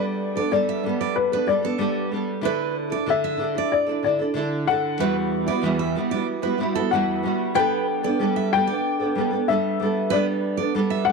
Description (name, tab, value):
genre	pop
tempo	94 BPM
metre	4/4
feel	straight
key	G major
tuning	A4 = 440 Hz
part	dark upright piano	melody	0.0-11.1 s	B4 to G5	-24 LUFS	left 9 dB	none
part	nylon-string guitar	accompaniment	0.0-11.1 s	E2 to A4	-23 LUFS	right 2 dB	double-tracked left and right
part	picked steel-string acoustic guitar	arpeggios	0.0-11.1 s	A4 to E5	-30 LUFS	right 14 dB	none
room	light reverb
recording	1960s-style stereo with parts hard left and right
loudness	-20 LUFS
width	side -4 dB against mid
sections	0.0-11.1 A section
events	none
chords	0.0 Gadd9; 2.4 Dsus2; 5.0 Emadd9; 7.6 Gadd9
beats	0.53 1.17 1.81 | 2.45 3.08 3.72 4.36 | 5.00 5.64 6.28 6.92 | 7.55 8.19 8.83 9.47 | 10.11 10.74